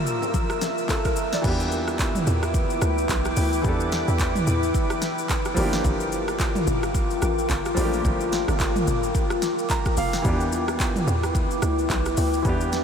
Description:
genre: amapiano.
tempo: 109 BPM.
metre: 4/4.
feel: swing 58% on 16ths.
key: unclear.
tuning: A4 = 437 Hz.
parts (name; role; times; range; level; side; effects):
warm concert grand piano; accompaniment; 0.0-12.8 s; E3 to Bb5; -30 LUFS; right 1 dB; none.
deep dark ambient pad; sustained chords; 0.0-12.8 s; E4 to E6; -26 LUFS; left 1 dB; chorus, built-in reverb, sidechain pumping.
deep house drum kit; drums; 0.1-12.8 s; crash cymbal, handclaps, hi-hat, kick drum, rim click, shaker, snare drum, toms; -26 LUFS; equal; none.
bongos and congas; percussion; 0.2-1.0 s; none; -37 LUFS; left 7 dB; none.
hollow log drum bass; bass; 1.4-12.8 s; F1 to E2; -26 LUFS; equal; none.
room: moderate huge ambient reverb, RT60 7.1 s.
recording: dreamy mix soaked in reverb.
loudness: -21 LUFS.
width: side -7 dB against mid.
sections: 0.0-1.4 A section; 1.4-12.8 B section.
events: drop 1.4-12.8; grand piano fill 9.4-10.2.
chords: 0.0 Gm7; 1.4 Em7; 5.6 Gm7; 10.2 Em7.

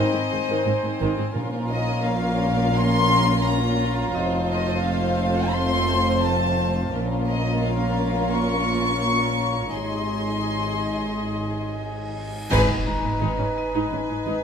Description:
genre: cinematic, suspense film score.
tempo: 86 BPM.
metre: 4/4.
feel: straight.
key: Bb minor.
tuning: A4 = 445 Hz.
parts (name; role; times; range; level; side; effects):
warm symphonic violin section; melody; 0.0-14.4 s; Eb5 to Db6; -26 LUFS; left 3 dB; none.
warm symphonic violin section; second line; 0.0-14.4 s; C4 to Eb5; -28 LUFS; left 1 dB; none.
dark chamber viola section; accompaniment; 0.0-14.4 s; C3 to Eb4; -30 LUFS; right 3 dB; none.
glass harmonica; sustained chords; 0.0-14.4 s; Eb4 to Bb5; -32 LUFS; equal; none.
mellow French horn section; sustained chords; 0.0-12.2 s; Ab3 to Eb4; -30 LUFS; left 8 dB; none.
warm chamber double bass section; bass; 0.0-14.3 s; F1 to Bb1; -27 LUFS; right 2 dB; none.
warm symphonic cello section; bass; 0.0-14.3 s; F2 to Bb2; -29 LUFS; right 3 dB; none.
dark symphonic violin section; texture; 0.0-1.0 s; Bb5 to Cb6; -42 LUFS; left 4 dB; none.
vibraphone with hard mallets; texture; 0.0-14.4 s; Eb4 to A#5; -34 LUFS; left 3 dB; none.
timpani; percussion; 1.4-2.4, 12.5-13.5 s; G#2 to Bb2; -33 LUFS; left 1 dB; none.
cymbal swell, clash cymbals and concert bass drum; percussion; 9.7-13.9 s; none; -33 LUFS; equal; none.
reverse cymbal and impact; sound effects; 12.2-14.4 s; none; -35 LUFS; equal; none.
room: moderate scoring stage reverb, RT60 1.7 s.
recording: close, detailed microphones.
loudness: -20 LUFS.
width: side -7 dB against mid.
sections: 0.0-12.5 A section; 12.5-14.4 B section.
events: reverse cymbal 12.2-12.5; band accent 12.5-13.2; impact 12.5-14.4.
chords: 0.0 Ab; 1.4 Bbm; 4.1 F; 6.9 Bbm; 9.7 Ab; 12.5 G#m.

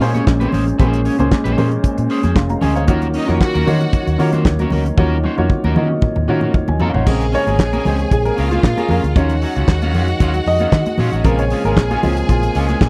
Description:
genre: disco.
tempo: 115 BPM.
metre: 4/4.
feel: straight.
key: Bb minor.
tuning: A4 = 440 Hz.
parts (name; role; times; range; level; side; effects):
electric guitar at the edge of break-up; accompaniment; 0.0-12.8 s; Gb3 to Db5; -27 LUFS; equal; none.
warm baby grand piano; accompaniment; 0.0-12.9 s; Bb2 to C6; -23 LUFS; equal; none.
dark French horn section; sustained chords; 0.0-12.9 s; C3 to Ab4; -26 LUFS; equal; none.
vintage muted fingered electric bass; bass; 0.0-12.9 s; F1 to Eb3; -21 LUFS; equal; none.
warm soul drum kit; drums; 0.0-12.9 s; crash cymbal, handclaps, hi-hat, kick drum, snare drum, toms; -18 LUFS; equal; none.
congas; percussion; 0.1-12.9 s; none; -27 LUFS; equal; none.
clear studio string section; second line; 3.1-12.9 s; Db4 to Ab5; -27 LUFS; equal; none.
room: little or no reverb.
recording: dry, close 1970s-style studio recording.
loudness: -16 LUFS.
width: mono.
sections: 0.0-7.1 A section; 7.1-12.9 B section.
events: drum fill 5.0-7.1; grand piano solo 7.1-12.9.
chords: 0.0 Bbm9; 2.9 Ebm7; 7.1 Bbm7; 9.2 Ebm9; 11.2 Bbm7.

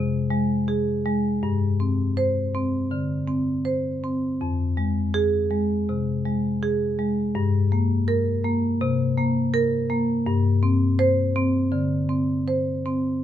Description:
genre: classical, contemporary piece for solo marimba.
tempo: 81 BPM.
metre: 4/4.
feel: straight.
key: unclear.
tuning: A4 = 439 Hz.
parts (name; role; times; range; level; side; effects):
marimba with medium hard mallets; solo; 0.0-13.2 s; F2 to C5; -21 LUFS; left 1 dB; none.
room: light reverb.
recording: close, detailed microphones.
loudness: -21 LUFS.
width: side -11 dB against mid.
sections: 0.0-13.2 A section.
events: none.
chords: 0.0 Fm (rootless); 1.4 Gsus4; 4.4 Fm; 7.4 Gm; 8.8 Bbsus2/C; 10.3 Gsus4.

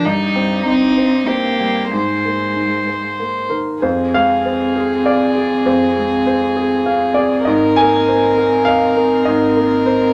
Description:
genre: neoclassical piano and strings.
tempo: 93-101 BPM.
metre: 3/4.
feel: rubato.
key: unclear.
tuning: A4 = 439 Hz.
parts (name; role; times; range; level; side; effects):
rich violin; melody; 0.0-10.1 s; Eb4 to C5; -21 LUFS; equal; none.
warm cello; second line; 0.0-10.1 s; G3 to C4; -21 LUFS; equal; none.
warm grand piano; accompaniment; 0.0-10.1 s; F2 to Ab5; -19 LUFS; equal; none.
room: moderate large studio reverb, RT60 1.2 s.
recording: none.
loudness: -16 LUFS.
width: mono.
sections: 0.0-3.8 A section; 3.8-10.1 B section.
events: none.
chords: 0.1 Cm/G; 1.9 Abadd9; 3.8 Fm; 7.5 Abadd9.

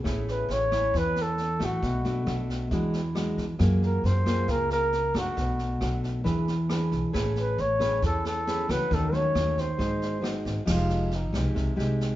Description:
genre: bossa nova.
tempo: 136 BPM.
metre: 4/4.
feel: straight.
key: unclear.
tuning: A4 = 440 Hz.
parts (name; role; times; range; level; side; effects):
nylon-string guitar; accompaniment; 0.0-12.2 s; B2 to B#4; -29 LUFS; equal; none.
upright bass; bass; 0.1-12.2 s; F1 to F#2; -29 LUFS; equal; none.
jazz brush drum kit; drums; 0.1-12.1 s; crash cymbal, kick drum, rim click, snare drum; -35 LUFS; equal; none.
breathy flugelhorn; melody; 0.3-11.4 s; Eb4 to C#5; -28 LUFS; equal; none.
room: wet studio reverb, RT60 0.8 s.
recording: band playing live in one room, nothing above 7.6 kHz.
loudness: -24 LUFS.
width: side -14 dB against mid.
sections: 0.0-10.7 A section; 10.7-12.2 B section.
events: flugelhorn solo 10.7-12.2.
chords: 0.1 Amaj7; 1.8 Bm7; 2.7 E9; 3.6 F#maj9; 5.4 Bm7; 6.3 E7; 7.1 Amaj9; 8.9 D#m7b5; 9.8 G#7; 10.7 Fm9.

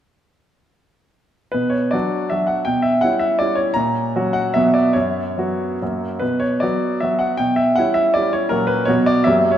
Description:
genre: classical, romantic triple-time dance for piano with dotted rhythms.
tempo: 132-176 BPM.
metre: 3/4.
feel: rubato.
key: B minor.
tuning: A4 = 440 Hz.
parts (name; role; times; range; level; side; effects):
clear grand piano; solo; 1.5-9.6 s; F#2 to A#5; -16 LUFS; equal; none.
room: wet concert hall reverb, RT60 2.4 s.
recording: none.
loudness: -16 LUFS.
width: side -10 dB against mid.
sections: 1.5-9.6 A section.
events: none.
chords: 1.5 Bm; 2.7 C#m7b5/B; 3.8 F#/A#; 4.6 Bm; 5.0 F#sus4; 5.8 F#; 6.2 Bm; 7.4 C#m7b5/B; 8.5 F#/A#; 8.9 Bm.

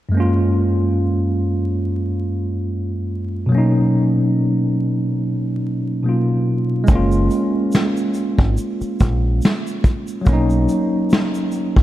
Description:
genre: lo-fi hip hop.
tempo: 71 BPM.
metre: 4/4.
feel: swing 55% on 16ths.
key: F# major.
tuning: A4 = 440 Hz.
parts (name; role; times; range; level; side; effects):
tine electric piano; accompaniment; 0.1-11.8 s; F#2 to E#4; -18 LUFS; equal; medium stereo tremolo, cassette tape, low-pass filter.
deep dub picked electric bass; bass; 6.9-11.8 s; F#1 to C#2; -18 LUFS; equal; none.
vintage brush drum kit; drums; 6.9-11.8 s; hi-hat, kick drum, shaker, snare drum; -17 LUFS; equal; none.
room: moderate lush hall reverb, RT60 2.9 s.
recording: vinyl crackle.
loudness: -16 LUFS.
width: side -14 dB against mid.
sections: 0.1-6.9 A section; 6.9-11.8 B section.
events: none.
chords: 0.1 F#maj9; 3.5 Bmaj9; 6.9 F#maj9 (rootless); 10.3 Bmaj9.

